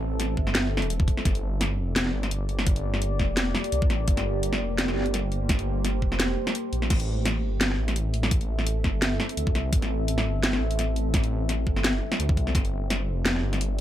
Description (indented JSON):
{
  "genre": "half-time drum and bass",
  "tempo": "170 BPM",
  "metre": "4/4",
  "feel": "swing 54% on 16ths, half-time",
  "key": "A phrygian",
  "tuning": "A4 = 436 Hz",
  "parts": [
    { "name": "deep dark ambient pad", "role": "sustained chords", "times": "0.0-13.8 s", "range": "Bb3 to E5", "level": "-32 LUFS", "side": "equal", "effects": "chorus, built-in reverb, sidechain pumping" },
    { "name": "dark detuned saw bass", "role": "bass", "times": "0.0-13.8 s", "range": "E1 to D2", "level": "-27 LUFS", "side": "equal", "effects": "none" },
    { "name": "drum and bass drum kit", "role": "drums", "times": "0.2-13.8 s", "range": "crash cymbal, hi-hat, snare drum", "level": "-27 LUFS", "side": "equal", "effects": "none" },
    { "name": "electronic kick drum", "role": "drums", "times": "0.4-12.6 s", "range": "none", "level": "-25 LUFS", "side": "equal", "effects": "overdrive" }
  ],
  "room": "little or no reverb",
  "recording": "none",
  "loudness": "-23 LUFS",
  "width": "side -12 dB against mid",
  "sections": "0.0-13.8 A section",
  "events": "break 6.5-6.9",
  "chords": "0.0 Am; 1.3 Gm; 6.9 Am; 12.5 Gm"
}